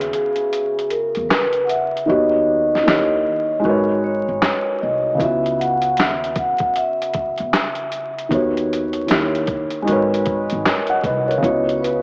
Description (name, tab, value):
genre	lo-fi hip hop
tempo	77 BPM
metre	4/4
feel	swing 62% on 16ths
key	C# dorian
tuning	A4 = 438 Hz
part	vibraphone with medium mallets	melody	0.0-12.0 s	G#4 to F#5	-23 LUFS	equal	low-pass filter, analog delay
part	felt-muted upright piano	accompaniment	0.0-12.0 s	C#3 to F#5	-23 LUFS	equal	cassette tape, low-pass filter
part	upright bass	bass	0.0-12.0 s	G#1 to E2	-33 LUFS	equal	none
part	boom bap sampler-style drum kit	drums	0.0-12.0 s	handclaps, hi-hat, kick drum, snare drum	-25 LUFS	equal	none
room	wet spring reverb, RT60 2.5 s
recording	worn, warbling old tape, cassette tape, vinyl crackle, warbly pitch drift, small speaker sound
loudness	-19 LUFS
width	mono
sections	0.0-12.0 A section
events	break 0.0-5.2; hi-hats muted 2.1-5.2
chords	0.0 C#m11; 2.1 D#7alt; 2.9 D#7b9; 3.6 G#m11; 5.2 C#m11; 8.3 D#7alt; 9.1 D#7b9; 9.9 G#m11; 11.4 C#m11